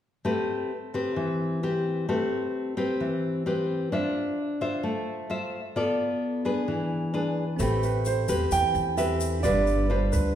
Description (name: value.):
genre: bossa nova.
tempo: 131 BPM.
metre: 4/4.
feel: straight.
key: A minor.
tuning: A4 = 440 Hz.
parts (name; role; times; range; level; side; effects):
nylon-string guitar; accompaniment; 0.2-10.4 s; E3 to E5; -26 LUFS; left 2 dB; none.
bell-like tine electric piano; accompaniment; 7.6-10.4 s; C4 to B5; -34 LUFS; right 3 dB; none.
upright bass; bass; 7.6-10.3 s; G1 to E2; -27 LUFS; equal; none.
tube shaker; percussion; 7.6-10.4 s; none; -37 LUFS; left 4 dB; none.
warm grand piano; melody; 7.8-10.4 s; B4 to G5; -26 LUFS; right 6 dB; none.
room: wet recital hall reverb, RT60 1.4 s.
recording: recorded in a church or concert hall.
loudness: -24 LUFS.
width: side -10 dB against mid.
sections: 0.2-7.6 A section; 7.6-10.4 B section.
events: none.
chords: 0.2 Am9; 3.9 Dm9; 5.8 Bm7b5; 6.7 E7; 7.6 Am9; 9.4 G7.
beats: | 0.25 0.71 1.17 1.62 | 2.08 2.54 3.00 3.46 | 3.92 4.38 4.84 5.30 | 5.76 6.22 6.68 7.13 | 7.59 8.05 8.51 8.97 | 9.43 9.89.